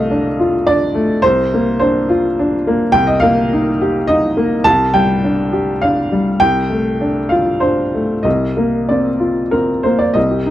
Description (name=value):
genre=neoclassical minimalist piano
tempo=91-106 BPM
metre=3/4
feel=rubato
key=unclear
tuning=A4 = 440 Hz
part: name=warm upright piano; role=solo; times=0.0-10.5 s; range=C2 to A5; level=-13 LUFS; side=equal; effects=none
room=little or no reverb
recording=dry, close 1970s-style studio recording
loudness=-13 LUFS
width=side -13 dB against mid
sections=0.0-10.2 A section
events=none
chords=0.0 Dm/C; 1.2 Bbadd9/C; 2.9 Eb/C; 4.6 Csus2; 8.2 Bbadd9/C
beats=0.08 0.65 | 1.21 1.79 2.36 | 2.93 3.50 4.07 | 4.65 5.22 5.81 | 6.39 6.99 7.61 | 8.25 8.89 9.52 | 10.16